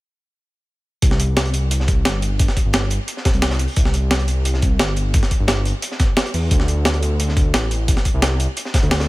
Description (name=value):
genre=liquid drum and bass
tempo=175 BPM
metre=4/4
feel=straight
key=C major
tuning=A4 = 441 Hz
part: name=dark detuned saw bass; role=bass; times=1.0-9.1 s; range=G1 to E2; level=-19 LUFS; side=equal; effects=none
part: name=breakbeat sampler-style drum kit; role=drums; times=1.0-9.0 s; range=hi-hat, snare drum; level=-22 LUFS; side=equal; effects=none
part: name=crunchy breakbeat drum kit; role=drums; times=1.0-9.1 s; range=hi-hat, snare drum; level=-29 LUFS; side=equal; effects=high-pass filter on hats, high-pass filter on snare, high-pass filter on room
part: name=electronic kick drum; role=drums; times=1.0-8.8 s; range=none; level=-17 LUFS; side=equal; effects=none
room=small room ambience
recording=none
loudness=-16 LUFS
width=side -19 dB against mid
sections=1.0-9.1 A section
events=none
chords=none